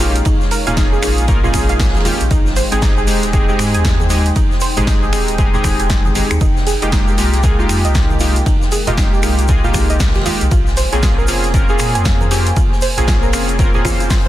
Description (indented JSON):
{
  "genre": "deep house",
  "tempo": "117 BPM",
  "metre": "4/4",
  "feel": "swing 61% on 16ths",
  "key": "F minor",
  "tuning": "A4 = 440 Hz",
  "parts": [
    { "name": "dark analog pad", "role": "sustained chords", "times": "0.0-14.3 s", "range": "Ab3 to Ab5", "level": "-27 LUFS", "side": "left 1 dB", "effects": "chorus, sidechain pumping" },
    { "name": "warbly dusty pluck", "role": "arpeggios", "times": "0.0-14.3 s", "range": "Eb4 to Ab5", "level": "-24 LUFS", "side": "right 3 dB", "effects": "chorus, sidechain pumping, ping-pong delay" },
    { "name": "warm analog keys", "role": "stabs", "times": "0.0-14.3 s", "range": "Ab3 to C5", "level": "-20 LUFS", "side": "equal", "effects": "chorus, sidechain pumping, ping-pong delay" },
    { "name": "sub bass with octave", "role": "bass", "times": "0.0-13.8 s", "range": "Eb1 to Bb2", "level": "-18 LUFS", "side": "equal", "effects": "sidechain pumping" },
    { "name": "punchy analog drum machine", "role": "drums", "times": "0.0-14.2 s", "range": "finger snaps, hi-hat, snare drum", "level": "-23 LUFS", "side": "right 1 dB", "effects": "none" },
    { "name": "vintage drum kit", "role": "drums", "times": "0.0-14.3 s", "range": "hi-hat, ride cymbal, snare drum", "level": "-31 LUFS", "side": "right 3 dB", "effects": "none" },
    { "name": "tube shaker", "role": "percussion", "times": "0.0-14.2 s", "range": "none", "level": "-30 LUFS", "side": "left 3 dB", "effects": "none" },
    { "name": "electronic kick drum", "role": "drums", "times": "0.3-14.2 s", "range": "none", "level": "-16 LUFS", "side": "equal", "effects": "none" },
    { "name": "congas", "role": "percussion", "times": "0.3-14.3 s", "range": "none", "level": "-27 LUFS", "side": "right 1 dB", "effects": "none" }
  ],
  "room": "small room reverb",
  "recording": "dense, heavily limited modern master",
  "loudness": "-12 LUFS",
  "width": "side -14 dB against mid",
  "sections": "0.0-14.3 A section",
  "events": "none",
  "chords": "0.0 Eb9sus4; 2.3 Abmaj7; 6.4 Fm11; 10.5 Bbm9"
}